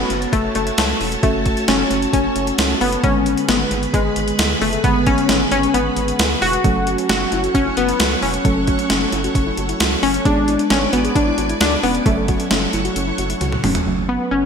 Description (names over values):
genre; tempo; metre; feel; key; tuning
synth-pop; 133 BPM; 4/4; straight; F# minor; A4 = 440 Hz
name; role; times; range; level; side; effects
funky polysynth comp; melody; 0.0-14.5 s; G#3 to F#4; -19 LUFS; left 2 dB; chorus, shimmer reverb, ping-pong delay
muted felt-like synth keys; accompaniment; 0.0-14.5 s; D3 to F#4; -24 LUFS; right 4 dB; chorus, shimmer reverb
soft string machine; sustained chords; 0.0-13.8 s; F#4 to D6; -26 LUFS; equal; ensemble chorus, shimmer reverb
rubbery square bass; bass; 0.0-14.5 s; E1 to D2; -26 LUFS; equal; none
gated 80s digital drum machine; drums; 0.1-13.9 s; hi-hat, kick drum, snare drum, toms; -20 LUFS; right 1 dB; gated reverb, gated reverb snare, overdrive
soft round pluck; arpeggios; 6.6-13.8 s; C#4 to A4; -26 LUFS; left 3 dB; chorus, shimmer reverb, ping-pong delay
room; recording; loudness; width
moderate lush hall reverb, RT60 2.1 s; bright 1980s-style digital production; -15 LUFS; side -6 dB against mid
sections
0.0-13.9 A section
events
drum fill 13.4-13.9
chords
0.0 F#m; 3.0 G#dim; 6.6 F#m; 10.3 G#dim; 12.1 F#m